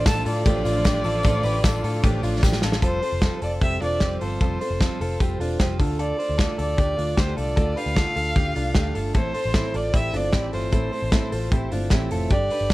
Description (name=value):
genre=jangly indie pop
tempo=152 BPM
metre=4/4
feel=straight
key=A minor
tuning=A4 = 440 Hz
part: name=warm violin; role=melody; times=0.0-12.7 s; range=C5 to A5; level=-28 LUFS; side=equal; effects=none
part: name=picked steel-string acoustic guitar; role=accompaniment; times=0.0-12.7 s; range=A2 to A4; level=-30 LUFS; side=right 3 dB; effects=none
part: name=warm studio string section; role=sustained chords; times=0.0-2.8 s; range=D3 to F4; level=-33 LUFS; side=left 1 dB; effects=none
part: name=direct-recorded clean electric guitar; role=arpeggios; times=0.0-12.7 s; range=C4 to C5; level=-31 LUFS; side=left 3 dB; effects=none
part: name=vintage muted picked electric bass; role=bass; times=0.0-12.7 s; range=E1 to A2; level=-27 LUFS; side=equal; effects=none
part: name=loose indie drum kit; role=drums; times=0.1-12.7 s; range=hi-hat, kick drum, ride cymbal, snare drum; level=-23 LUFS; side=equal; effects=none
part: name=tambourine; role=percussion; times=0.1-2.7 s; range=none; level=-44 LUFS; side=left 5 dB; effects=none
room=light reverb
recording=dark, warm production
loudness=-20 LUFS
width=side -18 dB against mid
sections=0.0-2.8 A section; 2.8-12.7 B section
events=drum fill 2.4-2.8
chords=0.0 Dm/A; 2.8 Fadd9; 5.8 Dm; 9.1 Am